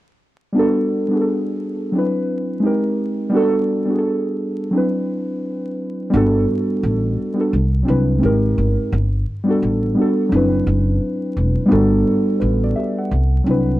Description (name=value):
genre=lo-fi hip hop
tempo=86 BPM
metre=4/4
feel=swing 59% on 16ths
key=G major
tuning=A4 = 444 Hz
part: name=muted felt-like synth keys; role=accompaniment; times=0.5-13.8 s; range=F#3 to F#5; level=-17 LUFS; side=equal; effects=chorus, cassette tape
part: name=upright bass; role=bass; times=6.1-13.8 s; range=E1 to C2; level=-18 LUFS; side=equal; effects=none
room=moderate studio reverb, RT60 0.5 s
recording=vinyl crackle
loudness=-16 LUFS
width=side -16 dB against mid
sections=0.5-6.1 A section; 6.1-13.8 B section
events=none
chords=0.5 Gmaj9; 1.9 Cmaj9#11; 2.6 Abmaj9; 3.3 Gmaj9; 4.7 D13/F#; 6.1 Gmaj9; 7.5 Cmaj9#11; 8.2 Abmaj9; 8.9 Gmaj9; 10.3 D13/F#; 11.7 Gmaj9; 13.1 Cmaj9#11